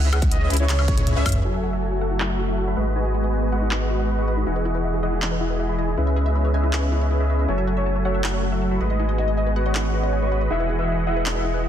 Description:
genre	future bass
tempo	159 BPM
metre	4/4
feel	half-time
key	F# dorian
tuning	A4 = 445 Hz
part	wide unison pluck	arpeggios	0.0-1.4 s	E4 to E5	-35 LUFS	left 1 dB	sidechain pumping
part	wide unison pluck	arpeggios	0.0-11.7 s	D#4 to B5	-34 LUFS	left 3 dB	cassette tape, sidechain pumping, dub echo
part	supersaw chords	riff	0.0-11.7 s	E3 to C#6	-25 LUFS	equal	vintage 12-bit sampler grit, sidechain pumping, low-pass filter, dub echo
part	saturated sub bass	bass	0.0-11.7 s	E1 to C#2	-23 LUFS	equal	sidechain pumping
part	warm velvety synth lead	melody	0.1-1.4, 7.5-11.5 s	C#5 to F#5	-29 LUFS	equal	chorus, sidechain pumping, dub echo
part	pop drum kit	drums	0.1-11.3 s	crash cymbal, handclaps, hi-hat, toms, woodblock	-28 LUFS	equal	overdrive, low-pass filter on hats, low-pass filter on snare, low-pass filter on cymbals, low-pass filter on perc, low-pass filter on toms, low-pass filter on room
part	electronic kick drum	drums	0.2-1.3 s	none	-22 LUFS	equal	none
part	airy breathy pad	sustained chords	1.8-11.7 s	C#3 to D#5	-32 LUFS	left 1 dB	chorus, sidechain pumping
room	light reverb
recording	dense, heavily limited modern master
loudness	-20 LUFS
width	side -10 dB against mid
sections	0.0-1.4 A section; 1.4-11.7 B section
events	drop 0.0-1.4; drum fill 0.7-1.4; filter sweep on drum 1.4-11.7; filter sweep on synth arpeggio sound 1.4-11.7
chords	0.0 C#m7; 1.4 F#m7; 2.8 G#m7; 4.5 Emaj9; 6.0 C#m7; 7.5 F#m7; 8.8 G#m7; 10.5 Emaj9

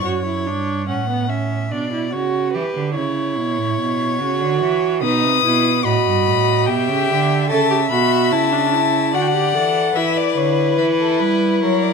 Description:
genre	classical, baroque-style fugue for string quartet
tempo	73 BPM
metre	3/4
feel	straight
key	unclear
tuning	A4 = 439 Hz
part	rich violin	melody	0.0, 5.0-11.9 s	A4 to D#6	-19 LUFS	left 12 dB	none
part	rich violin	second line	0.0-11.9 s	A#4 to F#5	-23 LUFS	left 3 dB	none
part	rich viola	accompaniment	0.0-11.9 s	B3 to A4	-21 LUFS	right 4 dB	none
part	clear cello	bass	0.0-11.9 s	F#2 to G3	-22 LUFS	right 5 dB	none
room	moderate recital hall reverb, RT60 1.4 s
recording	none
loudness	-16 LUFS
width	side -5 dB against mid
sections	0.0-11.9 A section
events	none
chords	0.0 Dmaj7/F#; 1.7 Bmadd9; 2.5 C#m7b5; 4.2 F#5/C#; 5.0 B7; 6.7 Em/B; 7.5 A; 9.1 D; 10.0 Em

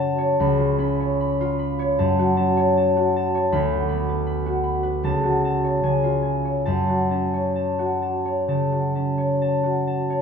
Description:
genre	classical, solo harp piece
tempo	63-81 BPM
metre	4/4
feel	rubato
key	F# minor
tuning	A4 = 443 Hz
part	concert harp	solo	0.0-10.2 s	C#2 to B5	-19 LUFS	equal	none
room	wet stone room reverb, RT60 1.4 s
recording	minimal, uncompressed stereo recording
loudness	-19 LUFS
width	side -6 dB against mid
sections	0.0-10.2 A section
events	none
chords	0.4 C#7; 2.0 F#m; 3.5 Bm/D; 5.0 F#m/C#; 5.8 C#; 6.7 F#m

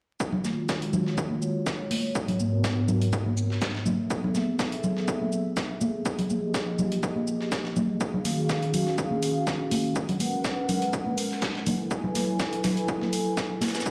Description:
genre	deep house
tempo	123 BPM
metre	4/4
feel	swing 54% on 16ths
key	unclear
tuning	A4 = 440 Hz
part	hollow soft pad	sustained chords	0.2-13.9 s	Ab2 to Ab5	-31 LUFS	equal	chorus, sidechain pumping
part	breakbeat sampler-style drum kit	drums	0.2-13.9 s	hi-hat, shaker, snare drum	-38 LUFS	equal	sidechain pumping on perc, high-pass filter on perc, high-pass filter on snare, sidechain pumping on hats, high-pass filter on hats
part	electronic kick drum	drums	0.2-13.9 s	none	-34 LUFS	equal	high-pass filter on kick, high-pass filter on room
part	congas	percussion	0.3-13.7 s	none	-32 LUFS	equal	none
part	electronic hi-hat	drums	8.2-13.7 s	none	-37 LUFS	equal	none
room	moderate digital room reverb, RT60 1.2 s, digital ambience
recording	played on a big sound system in a bare room, large studio reverb, vinyl crackle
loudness	-27 LUFS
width	mono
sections	0.2-13.9 A section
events	filter sweep on analog synth pad 0.2-13.9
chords	0.2 Ebm11; 2.2 Abm11; 3.9 Gbm11; 6.1 Fm11; 8.0 Ebm11; 10.0 Abm11; 11.7 Gbm11

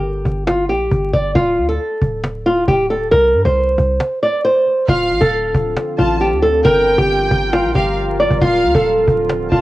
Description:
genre	hip hop, trap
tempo	136 BPM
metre	4/4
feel	half-time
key	D minor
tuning	A4 = 440 Hz
part	flamenco guitar	melody	0.0-9.6 s	F4 to D5	-15 LUFS	equal	low-pass filter, cassette tape, plate reverb
part	warm 808-style bass	bass	0.0-9.6 s	D1 to G2	-21 LUFS	equal	none
part	cajon	drums	0.0-9.6 s	none	-20 LUFS	equal	none
part	warm studio violin section	second line	4.9-9.6 s	F5 to A5	-23 LUFS	right 1 dB	cassette tape, plate reverb, analog delay
part	deep dark ambient pad	sustained chords	5.5-9.6 s	D3 to Bb4	-25 LUFS	right 2 dB	chorus, built-in reverb, cassette tape, plate reverb
room	moderate studio reverb, RT60 0.6 s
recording	home recording on cassette, vinyl crackle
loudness	-13 LUFS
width	side -17 dB against mid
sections	0.0-4.9 A section; 4.9-9.6 B section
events	break 4.0-4.9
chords	0.0 Gm; 1.4 D5; 3.1 C5; 4.9 Dm7; 6.6 Gm7; 8.4 Dm7

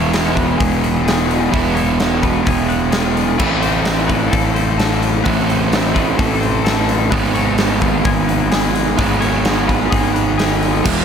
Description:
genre	rock, shoegaze and dream pop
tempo	129 BPM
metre	4/4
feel	straight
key	unclear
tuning	A4 = 436 Hz
part	twelve-string electric guitar	arpeggios	0.0-11.0 s	G#4 to C#5	-25 LUFS	left 7 dB	wide subtle chorus, digital delay
part	crunchy overdriven guitar	riff	0.0-11.0 s	G#2 to E4	-18 LUFS	right 9 dB	reverse reverb
part	thick fuzz guitar	riff	0.0-11.0 s	E2 to A3	-20 LUFS	left 10 dB	distortion, lush chorus
part	fuzz fingered electric bass	bass	0.0-11.0 s	E1 to A1	-21 LUFS	left 1 dB	overdrive
part	huge arena drum kit	drums	0.1-11.0 s	crash cymbal, hi-hat, kick drum, snare drum	-19 LUFS	equal	none
room	light reverb, small room reverb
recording	none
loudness	-13 LUFS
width	side -7 dB against mid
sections	0.0-10.8 A section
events	none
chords	0.0 E; 3.4 Am; 7.1 G#m

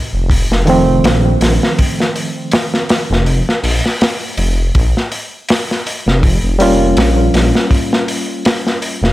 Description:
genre	trip hop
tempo	81 BPM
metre	4/4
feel	swing 56% on 16ths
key	Bb harmonic minor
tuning	A4 = 437 Hz
part	dark detuned saw bass	bass	0.1-9.1 s	F1 to Bb1	-14 LUFS	equal	tube saturation
part	crunchy breakbeat drum kit	drums	0.3-9.1 s	hi-hat, kick drum, snare drum	-15 LUFS	equal	none
part	barky reed electric piano	accompaniment	0.7-9.1 s	Eb3 to F4	-15 LUFS	right 1 dB	overdrive, harmonic tremolo, tape echo
room	little or no reverb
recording	none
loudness	-11 LUFS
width	side -16 dB against mid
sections	0.0-9.1 A section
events	none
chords	0.0 F7; 4.7 Bbm6

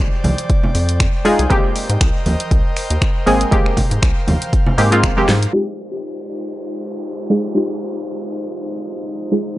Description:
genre	deep house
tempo	119 BPM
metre	4/4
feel	swing 55% on 16ths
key	F dorian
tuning	A4 = 440 Hz
part	airy breathy pad	sustained chords	0.0-9.6 s	Ab3 to G5	-26 LUFS	equal	chorus, sidechain pumping
part	filtered dub chord stab	stabs	0.0-9.5 s	Ab3 to Ab4	-17 LUFS	equal	chorus, sidechain pumping, tape echo
part	rubbery square bass	bass	0.0-5.5 s	Ab1 to Ab2	-18 LUFS	equal	none
part	deep house drum kit	drums	0.2-9.6 s	finger snaps, hi-hat, shaker, snare drum	-24 LUFS	equal	none
part	congas	percussion	0.2-5.3 s	none	-22 LUFS	right 1 dB	none
part	electronic kick drum	drums	0.5-5.1 s	none	-17 LUFS	equal	none
part	downlifter	sound effects	5.8-9.6 s	none	-36 LUFS	left 1 dB	none
room	digital ambience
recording	dry, gritty hardware recording, low-pass filter, nothing above 11.0 kHz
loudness	-15 LUFS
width	side -16 dB against mid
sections	0.0-5.5 A section; 5.5-9.6 B section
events	drum fill 5.3; filter sweep on synth stab 5.5-9.6; filter sweep on analog synth pad 5.5-9.6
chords	0.0 Fm9; 1.5 Abmaj9; 5.5 Fm9

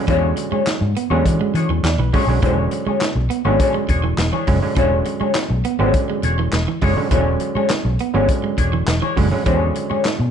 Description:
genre	funk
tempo	102 BPM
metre	4/4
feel	straight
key	E mixolydian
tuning	A4 = 436 Hz
part	overdriven clav	stabs	0.0-10.3 s	D3 to D5	-23 LUFS	right 4 dB	none
part	vintage hollow-body jazz guitar	accompaniment	0.1-10.2 s	D4 to C#5	-23 LUFS	left 6 dB	wah
part	electric guitar at the edge of break-up	riff	0.1-10.1 s	E3 to B3	-25 LUFS	right 8 dB	none
part	vintage muted fingered electric bass	bass	0.1-10.3 s	E1 to E3	-20 LUFS	equal	none
part	vintage drum kit	drums	0.1-10.2 s	handclaps, hi-hat, kick drum, snare drum	-22 LUFS	left 1 dB	none
room	light reverb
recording	dark, warm production, nothing above 10.9 kHz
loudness	-16 LUFS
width	side -8 dB against mid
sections	0.0-10.3 A section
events	clav fill 1.5-2.4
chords	0.0 E13

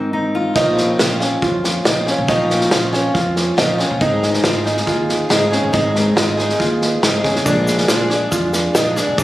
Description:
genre	indie folk with a building arrangement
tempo	139 BPM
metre	4/4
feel	straight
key	Bb minor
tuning	A4 = 440 Hz
part	fingerpicked steel-string acoustic guitar	accompaniment	0.0-2.3 s	Ab2 to F4	-22 LUFS	left 1 dB	none
part	picked plugged-in twelve-string acoustic guitar	accompaniment	0.6-9.2 s	Ab2 to Ab4	-20 LUFS	left 2 dB	none
part	dark upright piano	arpeggios	0.6-9.2 s	Db4 to F4	-19 LUFS	right 2 dB	digital delay
part	upright bass	bass	0.6-9.2 s	Ab1 to F2	-23 LUFS	equal	none
part	unplugged drum kit	drums	0.6-9.2 s	kick drum, snare drum	-19 LUFS	equal	none
part	tube shaker	percussion	7.5-9.2 s	none	-30 LUFS	equal	none
room	light reverb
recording	recorded on a phone in the room, studio reverb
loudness	-14 LUFS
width	side -15 dB against mid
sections	0.6-9.2 A section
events	none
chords	0.0 Ab; 0.6 Bbmadd9; 4.0 Ab; 7.5 Bb7

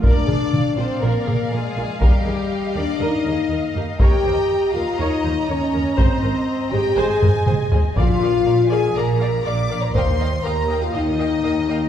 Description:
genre	cinematic, epic orchestral film score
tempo	121 BPM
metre	4/4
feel	straight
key	Bb mixolydian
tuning	A4 = 442 Hz
part	warm symphonic violin section	melody	0.0-11.9 s	G4 to D6	-30 LUFS	left 2 dB	none
part	warm symphonic violin section	second line	0.0-11.8 s	D5 to Bb5	-30 LUFS	left 2 dB	none
part	dark symphonic viola section	accompaniment	0.0-11.8 s	F4 to Eb5	-30 LUFS	right 1 dB	none
part	mellow French horn section	sustained chords	0.0-11.9 s	G3 to D5	-21 LUFS	left 2 dB	none
part	rich symphonic cello section	bass	0.0-11.9 s	Eb2 to Bb2	-31 LUFS	right 2 dB	none
part	warm symphonic double bass section	bass	0.0-11.9 s	Ab1 to Eb2	-25 LUFS	right 2 dB	none
part	taiko ensemble	drums	0.0-10.4 s	none	-18 LUFS	equal	none
part	timpani	percussion	8.0-8.7 s	Bb2	-28 LUFS	left 2 dB	none
room	wet scoring stage reverb, RT60 1.6 s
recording	heard from further back in the room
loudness	-17 LUFS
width	side -10 dB against mid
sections	0.0-11.9 A section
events	drum fill 7.2-8.0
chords	0.0 Bb; 2.0 Ebadd9; 4.0 Eb7; 6.0 Ab; 8.0 Bb; 10.0 Ebadd9

